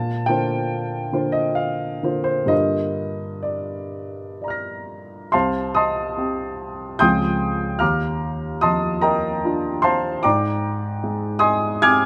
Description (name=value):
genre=classical, impressionist solo piano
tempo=62-76 BPM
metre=3/4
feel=rubato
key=C minor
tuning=A4 = 443 Hz
part: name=warm baby grand piano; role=solo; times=0.0-12.1 s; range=C2 to Bb6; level=-22 LUFS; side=equal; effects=none
room=light reverb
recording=close, detailed microphones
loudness=-22 LUFS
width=mono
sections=0.0-5.3 A section; 5.3-12.1 B section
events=none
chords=0.0 Bb69; 2.5 Gm7; 5.3 Cm; 7.0 Dbmaj7; 7.8 Ebmaj9; 10.2 Abmaj7#11